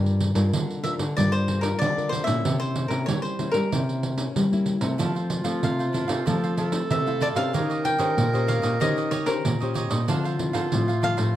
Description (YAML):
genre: samba and choro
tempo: 94 BPM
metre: 4/4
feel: straight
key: unclear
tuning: A4 = 440 Hz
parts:
  - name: nylon-string guitar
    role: accompaniment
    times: 0.0-11.4 s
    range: A2 to C5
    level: -30 LUFS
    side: left 4 dB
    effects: none
  - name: nylon-string guitar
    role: bass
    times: 0.0-11.3 s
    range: G2 to G3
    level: -26 LUFS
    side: equal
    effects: none
  - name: pandeiro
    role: percussion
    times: 0.1-11.3 s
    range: none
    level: -29 LUFS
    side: right 4 dB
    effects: none
  - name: cavaquinho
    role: melody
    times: 0.8-11.4 s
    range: Bb4 to G5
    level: -28 LUFS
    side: left 2 dB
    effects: none
  - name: clear clarinet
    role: second line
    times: 5.0-11.4 s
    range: F4 to Bb4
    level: -29 LUFS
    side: right 2 dB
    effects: none
  - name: cavaquinho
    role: accompaniment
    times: 5.0-11.3 s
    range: D4 to F5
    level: -33 LUFS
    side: right 5 dB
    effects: none
room: moderate studio reverb, RT60 1.0 s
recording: none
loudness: -22 LUFS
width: side -12 dB against mid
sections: 0.0-11.4 A section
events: none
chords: 0.0 Gm7; 2.4 C7b9; 5.0 Fmaj7; 7.5 Eb6; 10.1 Dm9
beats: 0.54 1.17 1.81 | 2.45 3.08 3.72 4.36 | 4.99 5.63 6.27 6.90 | 7.54 8.18 8.81 9.45 | 10.09 10.73